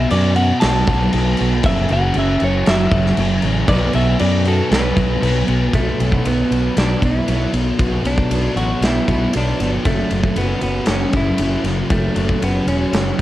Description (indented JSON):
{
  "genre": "rock, shoegaze and dream pop",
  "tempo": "117 BPM",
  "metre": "4/4",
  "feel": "straight",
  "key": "B minor",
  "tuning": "A4 = 440 Hz",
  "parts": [
    { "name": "direct-recorded clean electric guitar", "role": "melody", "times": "0.0-13.2 s", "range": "A3 to A5", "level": "-23 LUFS", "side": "equal", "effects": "cassette tape, analog delay" },
    { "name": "thick fuzz guitar", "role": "riff", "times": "0.0-13.2 s", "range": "F#2 to B3", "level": "-20 LUFS", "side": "equal", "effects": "distortion, analog chorus, cassette tape" },
    { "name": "modern bright fingered electric bass", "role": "bass", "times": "0.0-13.2 s", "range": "E1 to F#2", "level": "-20 LUFS", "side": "equal", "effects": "none" },
    { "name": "huge arena drum kit", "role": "drums", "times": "0.1-13.2 s", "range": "crash cymbal, kick drum, ride cymbal, snare drum", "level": "-20 LUFS", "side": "equal", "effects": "cassette tape" }
  ],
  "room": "small room ambience",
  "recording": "home recording on cassette",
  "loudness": "-15 LUFS",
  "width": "side -14 dB against mid",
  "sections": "0.0-5.7 A section; 5.7-13.2 B section",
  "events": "none",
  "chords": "0.0 B7(no3); 1.6 F#7(no3); 3.7 B5; 5.7 Bm; 9.8 F#m"
}